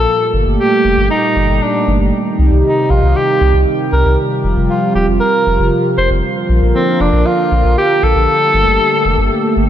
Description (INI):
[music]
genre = synthwave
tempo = 117 BPM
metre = 4/4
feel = straight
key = unclear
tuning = A4 = 441 Hz
[part]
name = warm tenor saxophone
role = melody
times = 0.0-9.7 s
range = C4 to C5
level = -14 LUFS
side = equal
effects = tape echo
[part]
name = warm analog pad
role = sustained chords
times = 0.0-9.7 s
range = Bb2 to Bb4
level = -16 LUFS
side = right 1 dB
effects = chorus
[part]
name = round analog bass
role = bass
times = 0.0-9.7 s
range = Eb1 to C2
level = -14 LUFS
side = equal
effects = tube saturation
[sound]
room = moderate lush hall reverb, RT60 2.9 s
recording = big arena sound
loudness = -11 LUFS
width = side -10 dB against mid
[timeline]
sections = 0.0-9.7 A section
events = none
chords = 0.1 Gmadd9; 2.1 Cm; 4.2 Fsus2; 6.2 Bb; 8.3 Gmadd9